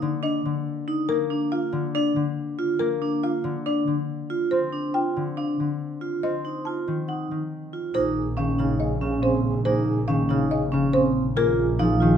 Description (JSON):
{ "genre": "classical, minimalist pattern music", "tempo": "140 BPM", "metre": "4/4", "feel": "straight", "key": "Bb minor from 7.9 s", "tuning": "A4 = 439 Hz", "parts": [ { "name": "folk marimba with medium mallets", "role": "melody", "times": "0.0-12.1 s", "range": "Bb4 to A5", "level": "-27 LUFS", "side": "left 3 dB", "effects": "none" }, { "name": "concert harp", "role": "accompaniment", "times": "0.0-12.2 s", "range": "Db3 to C4", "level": "-27 LUFS", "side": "left 3 dB", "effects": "none" }, { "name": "vibraphone with medium hard mallets", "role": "arpeggios", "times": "0.0-12.2 s", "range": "C4 to F4", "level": "-25 LUFS", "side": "right 2 dB", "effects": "none" }, { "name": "warm French horn", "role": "second line", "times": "7.9-12.2 s", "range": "Ab4", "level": "-34 LUFS", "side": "right 4 dB", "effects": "none" }, { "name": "warm studio double bass section", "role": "bass", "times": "7.9-12.2 s", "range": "Bb1", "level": "-26 LUFS", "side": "right 1 dB", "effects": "none" } ], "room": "light reverb", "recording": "close, detailed microphones", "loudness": "-22 LUFS", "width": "side -8 dB against mid", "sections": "0.0-7.9 A section; 7.9-12.2 B section", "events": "none", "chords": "0.0 Eb5; 1.1 Bb/D; 4.5 Gm7 (rootless); 6.2 F7(no3); 7.9 Bbm9; 11.4 Fm7/Bb" }